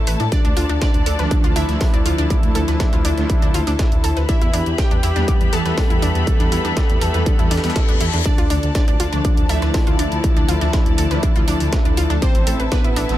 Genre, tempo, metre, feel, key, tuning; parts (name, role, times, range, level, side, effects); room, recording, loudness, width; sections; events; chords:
melodic techno; 121 BPM; 4/4; straight; D dorian; A4 = 440 Hz
fat analog lead; melody; 0.0-13.2 s; A3 to A4; -25 LUFS; left 1 dB; sidechain pumping, digital delay
glassy wavetable pluck; second line; 0.0-13.2 s; B4 to A5; -33 LUFS; right 3 dB; chorus, sidechain pumping, tape echo
rich symphonic string section; sustained chords; 0.0-13.2 s; F3 to B5; -28 LUFS; left 3 dB; sidechain pumping
dark detuned saw bass; bass; 0.0-13.2 s; A1 to A2; -21 LUFS; equal; tube saturation, sidechain pumping
wide unison pluck; arpeggios; 0.1-13.0 s; D4 to D6; -27 LUFS; equal; sidechain pumping, tape echo
breakbeat sampler-style drum kit; drums; 0.1-13.2 s; hi-hat, snare drum; -35 LUFS; equal
electronic hi-hat; drums; 0.1-13.2 s; -30 LUFS; right 2 dB; overdrive, sidechain pumping on hats
electronic kick drum; drums; 0.3-12.8 s; -17 LUFS; equal; distortion
analog synth brass; stabs; 1.2-13.2 s; E3 to D4; -27 LUFS; right 1 dB; chorus, sidechain pumping, tape echo
reverse cymbal; sound effects; 7.5-8.3 s; -29 LUFS; left 7 dB
little or no reverb; -15 LUFS; side -14 dB against mid
0.0-13.2 A section
reverse cymbal 7.5-8.3
0.3 Dm; 4.3 Em; 8.3 Dm; 12.2 Am